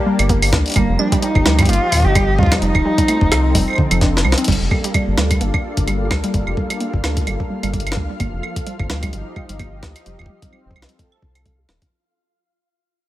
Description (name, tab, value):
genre	IDM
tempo	129 BPM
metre	4/4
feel	swing 56% on 16ths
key	G minor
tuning	A4 = 440 Hz
part	dark cello	melody	0.0-4.2 s	Bb3 to G4	-21 LUFS	equal	dub echo
part	warm analog pad	sustained chords	0.0-11.9 s	F3 to A5	-26 LUFS	left 1 dB	chorus
part	warbly dusty pluck	arpeggios	0.1-11.9 s	D3 to G4	-23 LUFS	right 3 dB	chorus, tape echo
part	round analog bass	bass	0.2-11.8 s	Eb1 to D2	-19 LUFS	equal	none
part	jungle sampler-style drum kit	drums	0.2-11.9 s	claves, crash cymbal, hi-hat, snare drum	-21 LUFS	right 1 dB	none
part	electronic kick drum	drums	0.3-11.9 s	none	-19 LUFS	equal	none
part	flickering grainy texture	texture	4.7-11.9 s	F4 to F5	-34 LUFS	left 1 dB	built-in reverb, sidechain pumping
room	digital ambience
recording	none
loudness	-15 LUFS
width	side -14 dB against mid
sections	0.0-4.5 A section; 4.5-11.9 B section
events	drum fill 4.0-4.5; fade-out 4.5-11.9; filter sweep on synth arpeggio sound 4.5-11.9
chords	0.0 Gmadd9; 0.8 Ebadd9; 2.6 F7; 4.5 Gmadd9; 8.2 Ebadd9; 10.1 F7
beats	0.29 | 0.76 1.22 1.69 2.15 | 2.62 3.08 3.55 4.01 | 4.48 4.94 5.41 5.87 | 6.34 6.80 7.27 7.73 | 8.20 8.66 9.13 9.60 | 10.06 10.53 10.99 11.46